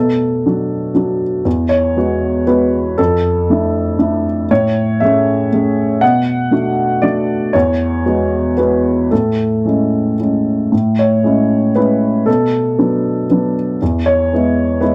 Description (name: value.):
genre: neoclassical minimalist piano.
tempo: 118 BPM.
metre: 3/4.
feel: rubato.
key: A major.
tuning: A4 = 441 Hz.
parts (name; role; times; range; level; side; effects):
warm baby grand piano; solo; 0.0-14.9 s; E2 to F#5; -15 LUFS; equal; none.
room: moderate studio ambience, RT60 0.5 s.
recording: none.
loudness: -15 LUFS.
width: mono.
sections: 0.0-10.7 A section; 10.7-14.9 A section.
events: none.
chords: 0.0 Bm7; 1.5 Eadd9; 3.0 Dmadd9/F; 4.5 Amaj7; 6.0 Bm7; 7.5 Eadd9; 9.1 Amaj7; 12.3 Bm7; 13.8 E.